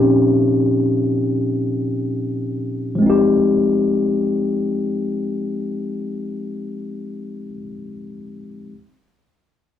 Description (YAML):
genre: soul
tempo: free time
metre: none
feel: none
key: F minor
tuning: A4 = 443 Hz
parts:
  - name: mellow tine electric piano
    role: accompaniment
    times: 0.0-8.7 s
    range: Bb2 to G4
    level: -18 LUFS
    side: left 2 dB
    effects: none
room: wet studio reverb, RT60 0.8 s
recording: band playing live in one room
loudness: -17 LUFS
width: side -10 dB against mid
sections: 0.0-3.0 A section; 3.0-6.2 B section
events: none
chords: 0.0 Eb13/Bb; 3.0 Fm9